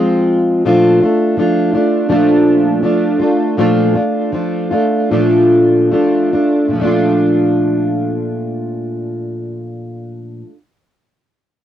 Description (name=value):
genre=pop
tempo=71-84 BPM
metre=4/4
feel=swing 60% on 16ths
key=Bb major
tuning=A4 = 440 Hz
part: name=fingerpicked plugged-in steel-string acoustic guitar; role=accompaniment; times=0.0-10.6 s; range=Bb2 to F4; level=-12 LUFS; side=equal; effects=double-tracked left and right
room=wet booth ambience, RT60 0.2 s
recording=home recording on cassette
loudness=-12 LUFS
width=side -10 dB against mid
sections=0.0-6.7 A section; 6.7-10.1 B section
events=slowing down 0.6-6.7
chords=0.0 Ab6; 0.6 Bbmaj7